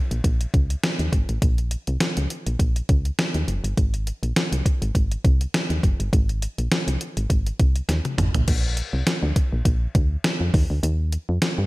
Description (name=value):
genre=1980s-style pop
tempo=102 BPM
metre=4/4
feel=swing 55% on 16ths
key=unclear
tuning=A4 = 440 Hz
part: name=solid FM bass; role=bass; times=0.1-11.7 s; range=Gb1 to G2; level=-23 LUFS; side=equal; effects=none
part: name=clean 12-bit digital drum machine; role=drums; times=0.1-11.6 s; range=crash cymbal, hi-hat, kick drum, snare drum, toms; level=-21 LUFS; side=equal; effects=none
room=moderate recital hall reverb, RT60 1.3 s, digital ambience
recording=big arena sound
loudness=-20 LUFS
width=side -21 dB against mid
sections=0.0-8.5 A section; 8.5-11.7 B section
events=drum fill 7.9-8.5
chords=none